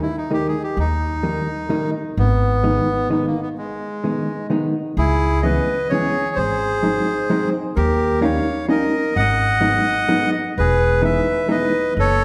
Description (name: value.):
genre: musette waltz.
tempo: 128 BPM.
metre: 3/4.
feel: straight.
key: G# minor, C# minor from 5.0 s.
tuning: A4 = 440 Hz.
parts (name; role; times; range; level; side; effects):
bandoneon; melody; 0.0-12.2 s; G#3 to F#5; -23 LUFS; equal; none.
hollow-body jazz guitar; accompaniment; 0.0-11.7 s; D#3 to D#4; -24 LUFS; equal; none.
upright bass; bass; 0.8-2.8, 5.0-12.2 s; E1 to D#2; -24 LUFS; equal; none.
room: wet recital hall reverb, RT60 1.7 s.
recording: recorded in a church or concert hall.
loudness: -19 LUFS.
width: mono.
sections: 0.0-5.0 A section; 5.0-12.2 B section.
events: break 3.6-5.0.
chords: 0.0 D#; 2.2 G#m; 5.0 C#m7; 6.4 G#7; 7.8 D#7; 9.2 G#m7; 10.6 Emaj7.